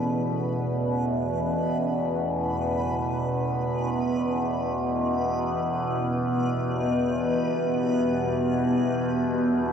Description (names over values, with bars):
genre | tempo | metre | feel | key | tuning
dark ambient drone | free time | none | none | E dorian | A4 = 440 Hz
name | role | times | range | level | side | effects
deep dark ambient pad | sustained chords | 0.0-9.7 s | B3 to E5 | -30 LUFS | left 1 dB | chorus, built-in reverb
gamelan-type bossed gongs | arpeggios | 0.0-1.1 s | none | barely audible | none | none
overtone-sweeping drone | drone | 0.0-9.7 s | E2 to B2 | -25 LUFS | equal | chorus, built-in reverb, phaser
backwards swelling texture | texture | 0.0-9.7 s | B4 | -37 LUFS | left 1 dB | built-in reverb
room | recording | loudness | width
wet cathedral reverb, RT60 5.3 s | worn, warbling old tape, cassette tape, warbly pitch drift | -23 LUFS | side -7 dB against mid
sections
0.0-9.7 A section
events
none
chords
0.0 A; 4.3 Em